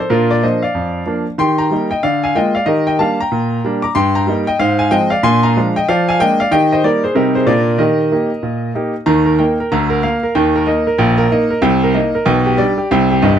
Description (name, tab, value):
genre	jazz, stride piano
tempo	187 BPM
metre	4/4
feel	swing 62% on 8ths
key	Eb major from 4.0 s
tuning	A4 = 440 Hz
part	clear grand piano	solo	0.0-13.4 s	G1 to D6	-12 LUFS	equal	none
room	moderate studio reverb, RT60 0.5 s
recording	close, detailed microphones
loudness	-12 LUFS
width	side -9 dB against mid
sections	0.0-9.1 A section; 9.1-13.4 B section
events	none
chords	0.1 Bb; 1.4 Eb; 2.0 Bb7/D; 2.7 Ebmaj7; 4.0 Eb/G; 4.6 Fm/Ab; 5.2 Bb7; 5.9 Bb7/F; 6.5 Eb; 7.2 Cm; 7.5 Bb; 7.8 Eb; 9.7 Bb/D; 10.4 Eb; 11.6 Cm7; 12.3 G/B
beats	| 0.11 0.43 0.75 1.07 | 1.39 1.71 2.03 2.35 | 2.67 2.99 3.31 3.63 | 3.95 4.28 4.59 4.92 | 5.24 5.56 5.88 6.20 | 6.52 6.84 7.16 7.48 | 7.80 8.12 8.44 8.76 | 9.07 9.39 9.71 10.03 | 10.35 10.67 10.99 11.31 | 11.63 11.95 12.27 12.59 | 12.91 13.23